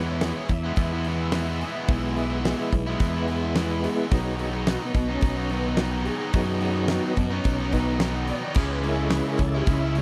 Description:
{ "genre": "classic rock", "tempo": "108 BPM", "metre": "4/4", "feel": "straight", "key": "E major", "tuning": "A4 = 440 Hz", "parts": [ { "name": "tonewheel organ", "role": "sustained chords", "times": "0.0-10.0 s", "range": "F#3 to E5", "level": "-31 LUFS", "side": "equal", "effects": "slow rotary speaker, overdrive, chorus vibrato" }, { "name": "distorted electric guitar", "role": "riff", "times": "0.0-10.0 s", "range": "B2 to E4", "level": "-34 LUFS", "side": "equal", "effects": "overdrive" }, { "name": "tight distorted guitar", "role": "riff", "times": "0.0-10.0 s", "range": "B2 to E4", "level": "-36 LUFS", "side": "equal", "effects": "distortion" }, { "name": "fuzz fingered electric bass", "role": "bass", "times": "0.0-10.0 s", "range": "B1 to F#2", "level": "-30 LUFS", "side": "equal", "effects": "overdrive" }, { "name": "huge arena drum kit", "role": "drums", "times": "0.2-10.0 s", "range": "crash cymbal, hi-hat, kick drum, snare drum", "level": "-28 LUFS", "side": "equal", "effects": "none" }, { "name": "overdriven semi-hollow guitar", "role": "riff", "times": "8.6-10.0 s", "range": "C#3 to C#4", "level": "-33 LUFS", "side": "equal", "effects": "tremolo" } ], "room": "little or no reverb", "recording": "dry, close 1970s-style studio recording", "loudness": "-25 LUFS", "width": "mono", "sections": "0.0-10.0 A section", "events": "tonewheel organ solo 0.0-10.0", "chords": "0.0 E; 4.1 B; 8.6 C#m", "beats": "0.22 0.78 1.34 | 1.90 2.45 3.01 3.57 | 4.12 4.68 5.24 5.79 | 6.35 6.91 7.46 8.02 | 8.57 9.13 9.68" }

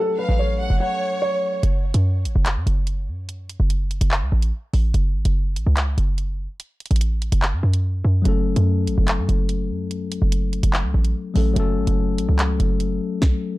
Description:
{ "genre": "hip hop, drill", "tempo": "145 BPM", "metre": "4/4", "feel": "half-time", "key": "F# minor", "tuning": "A4 = 440 Hz", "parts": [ { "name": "dark concert grand piano", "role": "melody", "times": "0.0-1.6 s", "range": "A4 to F#5", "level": "-24 LUFS", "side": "equal", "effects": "low-pass filter, ping-pong delay" }, { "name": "tine electric piano", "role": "accompaniment", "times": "0.0-1.6, 8.2-13.6 s", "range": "F#3 to A4", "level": "-25 LUFS", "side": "left 5 dB", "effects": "overdrive, low-pass filter" }, { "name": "clear symphonic violin section", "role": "second line", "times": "0.2-1.6 s", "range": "C#5 to F#5", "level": "-29 LUFS", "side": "right 1 dB", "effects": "ping-pong delay" }, { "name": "short 808-style bass", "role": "bass", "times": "0.3-13.0 s", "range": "F#1 to F#2", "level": "-19 LUFS", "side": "equal", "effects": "none" }, { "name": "drill drum kit", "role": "drums", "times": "1.6-13.3 s", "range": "handclaps, hi-hat, kick drum, snare drum", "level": "-24 LUFS", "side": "equal", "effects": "none" } ], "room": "digital ambience", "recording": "dark, warm production", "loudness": "-18 LUFS", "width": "side -19 dB against mid", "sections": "0.0-1.6 A section; 1.6-13.6 B section", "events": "break 0.8-1.6", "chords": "0.0 F#m", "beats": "0.39 0.80 1.22 | 1.63 2.05 2.46 2.87 | 3.29 3.70 4.12 4.53 | 4.94 5.36 5.77 6.18 | 6.60 7.01 7.42 7.84 | 8.25 8.67 9.08 9.49 | 9.91 10.32 10.73 11.15 | 11.56 11.98 12.39 12.80 | 13.22" }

